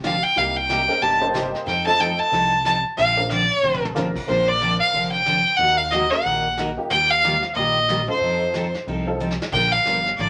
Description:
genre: country, western swing.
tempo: 183 BPM.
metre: 4/4.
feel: swing 61% on 8ths.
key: Bb major.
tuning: A4 = 440 Hz.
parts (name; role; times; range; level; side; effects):
picked steel-string acoustic guitar; accompaniment; 0.0-10.3 s; C3 to Bb4; -30 LUFS; equal; none.
fat analog bass; bass; 0.0-10.3 s; F1 to F2; -34 LUFS; equal; none.
vintage brush drum kit; drums; 0.0-10.3 s; brushed snare drum, crash cymbal, hi-hat, kick drum, snare drum, toms; -36 LUFS; equal; none.
bright fiddle; melody; 0.1-10.3 s; C5 to A5; -21 LUFS; equal; none.
honky-tonk upright piano; accompaniment; 0.9-9.7 s; A3 to C5; -30 LUFS; equal; none.
room: wet small room reverb, RT60 0.5 s.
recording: none.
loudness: -20 LUFS.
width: mono.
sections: 0.0-4.3 A section; 4.3-10.3 B section.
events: fiddle solo 0.0-4.3; drum fill 3.6-4.0, 9.2-9.5.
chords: 0.4 Cm7; 1.7 F7; 3.0 Bbadd9; 5.6 Ebm; 6.9 Ebadd9; 8.2 F7; 9.5 Bb.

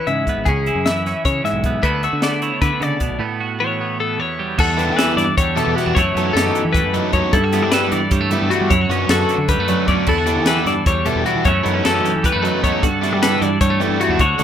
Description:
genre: math rock and midwest emo.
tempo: 306 BPM (eighths).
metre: 7/8.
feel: straight.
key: unclear.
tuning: A4 = 437 Hz.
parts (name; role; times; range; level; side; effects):
twelve-string electric guitar; accompaniment; 0.0-14.4 s; E2 to A4; -20 LUFS; right 6 dB; spring reverb, plate reverb.
twelve-string electric guitar; arpeggios; 0.0-14.4 s; F#4 to E5; -20 LUFS; left 6 dB; plate reverb.
growling fingered electric bass; bass; 0.1-14.4 s; G#1 to G3; -23 LUFS; equal; overdrive.
crisp fusion drum kit; drums; 0.1-14.4 s; crash cymbal, hi-hat, kick drum, snare drum; -21 LUFS; equal; none.
crunchy overdriven guitar; riff; 4.8-14.4 s; E3 to A4; -22 LUFS; left 1 dB; none.
room: light reverb.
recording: rough home demo mix.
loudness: -15 LUFS.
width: side -9 dB against mid.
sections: 0.0-4.6 A section; 4.6-14.4 B section.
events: break 3.2-4.6.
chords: 0.0 C#m7; 1.8 D69; 3.2 A13; 4.6 Em11; 6.0 B9sus4/F#; 7.3 Em11/G; 8.7 Bm9/F#; 10.1 Em11; 11.5 B9sus4/F#; 12.8 Em11/G.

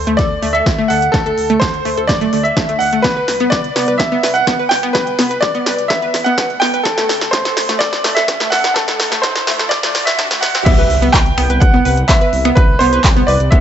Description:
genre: progressive house.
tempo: 126 BPM.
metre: 4/4.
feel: straight.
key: C lydian.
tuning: A4 = 441 Hz.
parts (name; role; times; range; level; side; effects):
bright grand piano; melody; 0.0-13.6 s; A4 to G5; -17 LUFS; right 1 dB; sidechain pumping, digital delay.
airy dreamy lead; second line; 0.0-13.6 s; A4 to G5; -22 LUFS; equal; chorus, sidechain pumping, digital delay.
dark detuned saw bass; bass; 0.0-13.6 s; D1 to F#2; -22 LUFS; equal; sidechain pumping.
analog pluck; arpeggios; 0.1-13.6 s; A3 to B4; -19 LUFS; equal; chorus, sidechain pumping, digital delay.
big-room dance drum kit; drums; 0.1-13.6 s; crash cymbal, finger snaps, handclaps, hi-hat, snare drum; -19 LUFS; equal; high-pass filter on hats, high-pass filter on snare, high-pass filter on cymbals, high-pass filter on room.
electronic kick drum; drums; 0.2-13.6 s; none; -15 LUFS; equal; none.
riser and impact; sound effects; 5.1-12.6 s; none; -26 LUFS; right 1 dB; none.
room: light reverb.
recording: high-pass filter, nothing above 7.9 kHz.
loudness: -12 LUFS.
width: side -9 dB against mid.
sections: 0.0-10.7 A section; 10.7-13.6 B section.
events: build-up 0.0-10.7; drum fill 0.0-10.7; filter sweep 0.0-10.7; riser 5.1-10.7; drop 10.7-13.6; impact 10.7-12.6.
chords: 0.0 D7; 3.0 Cmaj7; 6.9 D5; 10.7 Cmaj7.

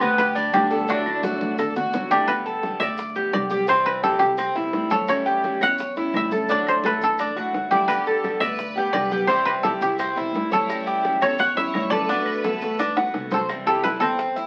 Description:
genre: latin, Cuban son and guajira.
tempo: 171 BPM.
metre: 4/4.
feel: straight.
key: G major.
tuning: A4 = 440 Hz.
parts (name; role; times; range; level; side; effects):
koto; melody; 0.0-14.5 s; F#4 to F#5; -25 LUFS; equal; none.
clear studio violin section; second line; 0.0-1.9, 7.7-13.4 s; D4 to C#5; -34 LUFS; equal; none.
picked old ladder-braced acoustic guitar; accompaniment; 0.0-14.2 s; C3 to G4; -34 LUFS; equal; none.
Cuban tres; arpeggios; 0.0-14.5 s; B3 to D5; -26 LUFS; equal; none.
upright bass; bass; 0.0-14.5 s; G1 to E2; -37 LUFS; equal; none.
claves; percussion; 0.0-14.2 s; none; -37 LUFS; equal; none.
congas; percussion; 0.0-14.5 s; none; -37 LUFS; equal; none.
maracas; percussion; 0.0-14.5 s; none; -52 LUFS; equal; none.
bongos; percussion; 0.2-14.5 s; none; -35 LUFS; equal; none.
room: wet small room reverb, RT60 0.5 s.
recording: very old 78 rpm record, vinyl crackle.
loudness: -22 LUFS.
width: mono.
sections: 0.0-2.3 A section; 2.3-13.5 B section.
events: drum fill 1.2-2.3, 12.4-13.5.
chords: 0.0 G; 0.9 Dadd9; 2.3 Gadd9; 3.7 C; 5.1 A7; 6.5 Dadd9; 7.9 Gadd9; 9.3 C; 10.7 A7; 12.1 D6; 13.5 C.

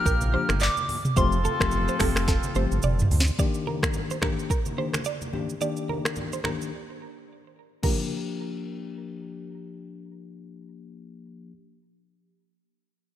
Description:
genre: afrobeats.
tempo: 108 BPM.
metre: 4/4.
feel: swing 58% on 16ths.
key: G minor.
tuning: A4 = 441 Hz.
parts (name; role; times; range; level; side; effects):
soft struck synth lead; melody; 0.0-2.8 s; C6 to F6; -29 LUFS; left 2 dB; chorus, digital delay.
warm horn section; second line; 0.0-3.1 s; C4 to Bb4; -35 LUFS; right 2 dB; none.
bell-like tine electric piano; accompaniment; 0.0-11.5 s; Eb3 to G4; -32 LUFS; left 6 dB; low-pass filter.
semi-hollow electric guitar; riff; 0.1-8.0 s; A4 to D5; -34 LUFS; right 8 dB; wide subtle chorus, low-pass filter, digital delay.
round analog bass; bass; 0.1-3.3 s; F1 to D2; -25 LUFS; equal; none.
afro-pop drum kit; drums; 0.1-8.0 s; crash cymbal, finger snaps, handclaps, hi-hat, kick drum, rim click, shaker, snare drum, toms; -26 LUFS; equal; none.
congas; percussion; 0.2-8.1 s; none; -36 LUFS; right 1 dB; none.
room: light reverb, digital ambience.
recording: bright 1980s-style digital production.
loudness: -23 LUFS.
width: side -12 dB against mid.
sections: 0.0-3.4 A section; 3.4-7.8 B section; 7.8-10.1 C section.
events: drum fill 2.3-3.4; filter sweep 3.4-7.8; break 6.7-7.8.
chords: 0.0 Gm7; 1.2 Fadd9; 3.4 Ebmaj7; 7.8 Gm7.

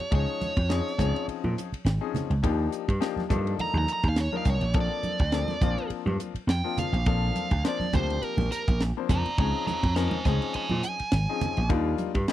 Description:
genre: electric jazz fusion.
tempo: 104 BPM.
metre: 4/4.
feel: swing 56% on 16ths.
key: Bb major.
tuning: A4 = 440 Hz.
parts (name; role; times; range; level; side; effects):
dark smooth lead guitar; melody; 0.0-11.7 s; Bb4 to Bb5; -31 LUFS; right 3 dB; overdrive.
tight funk drum kit; drums; 0.0-12.3 s; hi-hat, kick drum, ride cymbal, snare drum; -28 LUFS; right 1 dB; none.
clear baby grand piano; accompaniment; 0.1-12.3 s; F3 to C5; -32 LUFS; left 12 dB; none.
vintage slap bass; bass; 0.1-12.3 s; Ab1 to Bb2; -26 LUFS; equal; none.
congas; percussion; 0.4-12.1 s; none; -33 LUFS; right 3 dB; none.
room: little or no reverb.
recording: dry, close 1970s-style studio recording.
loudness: -24 LUFS.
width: side -13 dB against mid.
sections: 0.0-12.3 A section.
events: lead electric guitar solo 0.0-12.3.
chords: 0.1 Dbmaj9; 2.4 Ebmaj9; 4.8 Bbmaj9; 9.4 Dbmaj9; 11.7 Ebmaj9.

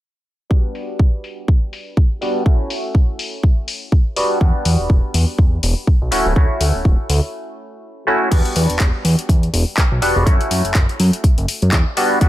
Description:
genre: filtered disco house.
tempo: 123 BPM.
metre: 4/4.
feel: swing 57% on 16ths.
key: E dorian.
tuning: A4 = 439 Hz.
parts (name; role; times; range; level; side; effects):
bright clav; accompaniment; 0.5-12.3 s; G3 to F#4; -21 LUFS; equal; phaser, vintage 12-bit sampler grit, sidechain pumping, low-pass filter.
electronic kick drum; drums; 0.5-12.3 s; none; -14 LUFS; equal; none.
punchy analog drum machine; drums; 0.8-12.3 s; crash cymbal, handclaps, hi-hat; -23 LUFS; left 2 dB; overdrive, sidechain pumping on hats, low-pass filter on hats, sidechain pumping on cymbals, low-pass filter on cymbals, low-pass filter on snare.
fat analog bass; bass; 4.4-12.3 s; D1 to F#2; -17 LUFS; equal; sidechain pumping, low-pass filter.
room: digital ambience.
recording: none.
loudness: -14 LUFS.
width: side -15 dB against mid.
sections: 0.5-8.3 A section; 8.3-12.3 B section.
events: filter sweep 0.5-8.3, 8.3-12.3; break 7.3-8.3.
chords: 0.5 Gmaj7; 2.5 F#m7; 4.2 Em9; 6.1 Dmaj7; 8.3 Em9; 10.3 F#m7.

